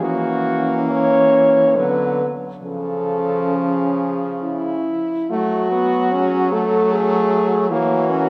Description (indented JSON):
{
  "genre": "classical, lyrical piece for horn quartet",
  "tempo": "64-79 BPM",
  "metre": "3/4",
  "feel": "rubato",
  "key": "F# minor",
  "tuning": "A4 = 438 Hz",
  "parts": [
    { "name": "mellow French horn", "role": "melody", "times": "0.0-8.3 s", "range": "F#4 to C#5", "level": "-22 LUFS", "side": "equal", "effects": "none" },
    { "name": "mellow French horn", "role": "second line", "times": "0.0-8.3 s", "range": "B3 to A4", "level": "-24 LUFS", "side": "equal", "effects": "none" },
    { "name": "clear French horn", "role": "accompaniment", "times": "0.0-8.3 s", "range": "E#3 to C#4", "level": "-25 LUFS", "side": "equal", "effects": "none" },
    { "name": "clear French horn", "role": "bass", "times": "0.0-8.3 s", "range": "C#3 to F#3", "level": "-26 LUFS", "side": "equal", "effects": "none" }
  ],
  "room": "wet church reverb, RT60 2.7 s",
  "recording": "none",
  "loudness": "-18 LUFS",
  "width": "mono",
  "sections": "0.0-5.3 A section; 5.3-8.3 B section",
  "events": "none",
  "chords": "0.0 F#7/E; 1.8 Bm/D; 2.6 C#; 5.3 F#m; 7.7 F#7/E"
}